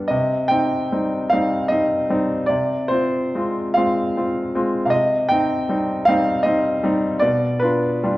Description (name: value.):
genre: classical, romantic nocturne for solo piano.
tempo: 46-53 BPM (dotted quarters).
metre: 12/8.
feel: rubato.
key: C minor.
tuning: A4 = 440 Hz.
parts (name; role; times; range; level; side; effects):
clear grand piano; solo; 0.0-8.2 s; G2 to G5; -17 LUFS; equal; none.
room: wet recital hall reverb, RT60 1.4 s.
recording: worn, warbling old tape, cassette tape, warbly pitch drift.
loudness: -17 LUFS.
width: side -17 dB against mid.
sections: 0.0-8.2 A section.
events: none.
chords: 0.1 Cm; 2.5 Fm/C; 4.9 Cm; 7.2 G7/B.